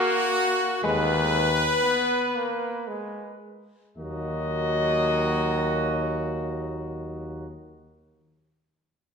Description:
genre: classical, brass quintet.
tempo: 53-62 BPM.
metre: 3/4.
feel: rubato.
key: Eb minor.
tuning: A4 = 440 Hz.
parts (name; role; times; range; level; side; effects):
warm cornet; melody; 0.0-7.5 s; Gb4 to Eb5; -27 LUFS; left 6 dB; none.
clear trumpet; second line; 0.0-7.5 s; Gb4 to Cb5; -29 LUFS; right 5 dB; none.
clear trombone; accompaniment; 0.0-7.5 s; Gb3 to Cb4; -31 LUFS; right 2 dB; none.
mellow French horn; accompaniment; 0.8-7.5 s; Ab3 to Bb3; -32 LUFS; right 1 dB; none.
mellow bass trombone; bass; 0.8-7.5 s; Eb2; -29 LUFS; equal; none.
room: wet recital hall reverb, RT60 1.5 s.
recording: recorded in a church or concert hall.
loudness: -23 LUFS.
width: side -6 dB against mid.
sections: 0.0-4.0 A section; 4.0-7.3 B section.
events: slowing down 0.0-4.0.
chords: 0.0 Ebm (rootless); 0.8 Abm/Eb; 4.0 Ebm.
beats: | 0.83 1.83 2.87 | 3.98 5.07 6.17.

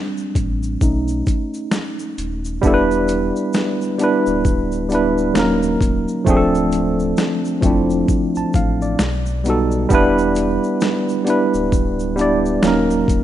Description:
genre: lo-fi hip hop.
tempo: 66 BPM.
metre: 4/4.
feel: swing 60% on 16ths.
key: unclear.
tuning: A4 = 440 Hz.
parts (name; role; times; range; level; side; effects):
tine electric piano; accompaniment; 0.0-13.2 s; F3 to A5; -17 LUFS; right 1 dB; medium stereo tremolo, low-pass filter.
boom bap sampler-style drum kit; drums; 0.2-13.2 s; hi-hat, kick drum, shaker, snare drum; -20 LUFS; left 1 dB; overdrive.
egg shaker; percussion; 0.2-13.2 s; none; -42 LUFS; left 5 dB; none.
sub bass with octave; bass; 0.4-13.2 s; D1 to B1; -24 LUFS; left 1 dB; none.
room: light reverb, digital ambience.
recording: rough home demo mix, nothing above 10.7 kHz.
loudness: -15 LUFS.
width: side -12 dB against mid.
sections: 0.0-2.6 A section; 2.6-13.2 B section.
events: tine electric piano solo 0.0-2.6.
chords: 0.0 Bb69 (rootless); 0.8 B7; 2.6 Em7; 5.4 Ebm7; 6.3 Dm7; 9.0 B7b13; 9.9 Em7; 12.6 Ebm7.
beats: 0.81 1.72 | 2.63 3.54 4.45 5.36 | 6.27 7.17 8.08 8.99 | 9.90 10.81 11.72 12.63.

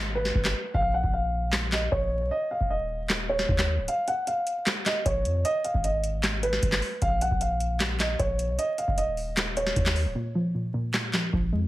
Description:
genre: hip hop, trap.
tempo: 153 BPM.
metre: 4/4.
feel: half-time.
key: Bb phrygian.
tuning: A4 = 440 Hz.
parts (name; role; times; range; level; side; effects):
long sustained 808-style bass; bass; 0.0-11.7 s; Db1 to F2; -29 LUFS; equal; none.
downlifter; sound effects; 0.1-0.7 s; none; -51 LUFS; equal; none.
dark concert grand piano; melody; 0.2-10.1 s; Cb5 to Gb5; -28 LUFS; right 1 dB; low-pass filter, tape echo.
booming analog drum machine; drums; 0.3-11.5 s; handclaps, hi-hat, kick drum, snare drum; -27 LUFS; equal; none.
soft round pluck; accompaniment; 10.2-11.7 s; Bb2 to Ab3; -27 LUFS; equal; chorus, low-pass filter.
room: light reverb.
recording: vinyl crackle.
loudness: -24 LUFS.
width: side -16 dB against mid.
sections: 0.0-11.7 A section.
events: break 0.0-3.9, 3.9-4.3, 10.2-10.9; hi-hats muted 10.2-11.7.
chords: 0.0 Abm; 0.7 Bbm; 2.3 Dbsus2; 3.9 Bbm; 5.4 Abm; 7.0 Bbm; 8.6 Dbsus2; 10.2 Bb5.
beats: 0.35 | 0.74 1.14 1.53 1.92 | 2.31 2.70 3.10 3.49 | 3.88 4.27 4.66 5.06 | 5.45 5.84 6.23 6.62 | 7.02 7.41 7.80 8.19 | 8.59 8.98 9.37 9.76 | 10.15 10.55 10.94 11.33.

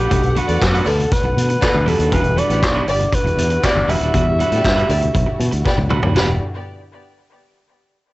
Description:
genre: disco.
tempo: 119 BPM.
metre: 4/4.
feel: straight.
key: E minor.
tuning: A4 = 438 Hz.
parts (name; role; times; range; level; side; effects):
breathy alto saxophone; melody; 0.0-5.7 s; F#4 to E5; -20 LUFS; equal; cassette tape, tape echo.
electric guitar at the edge of break-up; accompaniment; 0.0-6.3 s; G3 to B4; -25 LUFS; right 5 dB; cassette tape.
dark studio string section; sustained chords; 0.0-6.4 s; D3 to F#5; -28 LUFS; left 1 dB; cassette tape.
fingered electric bass; bass; 0.0-6.4 s; D#1 to B2; -19 LUFS; equal; none.
vintage drum kit; drums; 0.1-6.3 s; crash cymbal, handclaps, hi-hat, kick drum, snare drum, toms; -20 LUFS; equal; cassette tape.
congas; percussion; 0.1-6.4 s; none; -29 LUFS; left 4 dB; none.
warm studio violin section; second line; 0.5-6.4 s; B3 to D5; -26 LUFS; left 1 dB; cassette tape, tape echo.
room: light reverb.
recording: home recording on cassette, nothing above 8.0 kHz.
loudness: -14 LUFS.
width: side -19 dB against mid.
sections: 0.0-6.2 A section; 6.2-8.1 B section.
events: drum fill 5.6-6.2.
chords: 0.0 Bm7; 1.9 Em9.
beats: | 0.10 0.61 1.11 1.62 | 2.12 2.63 3.13 3.63 | 4.14 4.64 5.14 5.65 | 6.15.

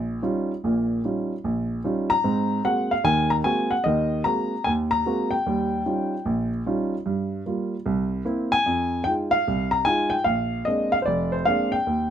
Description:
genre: solo jazz.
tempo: 150 BPM.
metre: 4/4.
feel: swing 66% on 8ths.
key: Eb mixolydian.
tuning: A4 = 437 Hz.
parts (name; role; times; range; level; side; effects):
warm upright piano; solo; 0.0-12.1 s; F1 to Bb5; -21 LUFS; equal; none.
room: light reverb.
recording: close, detailed microphones.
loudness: -21 LUFS.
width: side -9 dB against mid.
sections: 0.0-12.1 A section.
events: none.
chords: 0.0 Eb9; 2.2 Ab9; 5.5 Eb9; 7.1 Gm7; 7.9 C7; 8.7 Fm7; 10.3 Bb9.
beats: 0.23 | 0.63 1.03 1.44 1.84 | 2.24 2.64 3.04 3.44 | 3.84 4.25 4.65 5.05 | 5.45 5.85 6.25 6.65 | 7.05 7.46 7.86 8.26 | 8.66 9.06 9.46 9.86 | 10.26 10.66 11.06 11.46 | 11.86.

